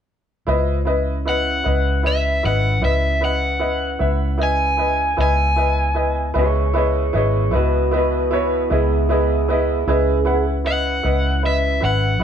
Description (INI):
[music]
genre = slow blues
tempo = 51 BPM (dotted quarters)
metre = 12/8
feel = straight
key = C# minor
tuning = A4 = 440 Hz
[part]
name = bright upright piano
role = accompaniment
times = 0.5-12.2 s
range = E4 to F#5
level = -22 LUFS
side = left 1 dB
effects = none
[part]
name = mellow tonewheel organ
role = sustained chords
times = 0.5-12.2 s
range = B3 to D#5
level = -29 LUFS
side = left 2 dB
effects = slow rotary speaker
[part]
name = vintage muted fingered electric bass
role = bass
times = 0.5-12.2 s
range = G#1 to C#2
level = -20 LUFS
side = equal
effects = none
[part]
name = crunchy overdriven guitar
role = melody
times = 1.3-12.2 s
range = E5 to G#5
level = -21 LUFS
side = equal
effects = none
[part]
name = electric guitar through a small old amp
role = second line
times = 6.4-10.4 s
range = E4 to C#5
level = -21 LUFS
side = right 5 dB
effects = none
[sound]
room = moderate studio reverb, RT60 0.8 s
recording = band playing live in one room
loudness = -16 LUFS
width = side -8 dB against mid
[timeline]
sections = 0.5-12.2 A section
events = none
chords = 0.5 C#m7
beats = | 0.48 1.66 2.83 4.01 | 5.18 6.36 7.53 8.70 | 9.87 11.04 12.21